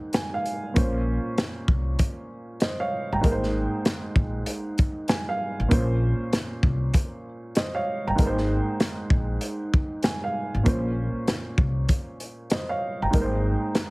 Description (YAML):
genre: hip hop, boom-bap hip-hop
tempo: 97 BPM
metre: 4/4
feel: swing 62% on 16ths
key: Bb dorian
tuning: A4 = 439 Hz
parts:
  - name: warm upright piano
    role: accompaniment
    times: 0.0-13.9 s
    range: Ab2 to Bb5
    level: -28 LUFS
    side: right 1 dB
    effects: cassette tape, high-pass filter, low-pass filter
  - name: crunchy breakbeat drum kit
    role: drums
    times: 0.1-13.9 s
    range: hi-hat, kick drum, snare drum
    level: -23 LUFS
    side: equal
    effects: none
  - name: upright bass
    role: bass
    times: 0.8-13.5 s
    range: G1 to C2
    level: -26 LUFS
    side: equal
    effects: none
room: little or no reverb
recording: heavily compressed radio sound, multiband compression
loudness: -23 LUFS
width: side -25 dB against mid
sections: 0.0-10.7 A section; 10.7-13.9 A section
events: break 0.0-0.8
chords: 0.0 Abadd9; 0.8 Bbmadd9; 3.2 Abadd9; 5.7 Bbmadd9; 8.2 Abadd9; 10.7 Bbmadd9; 13.1 Abadd9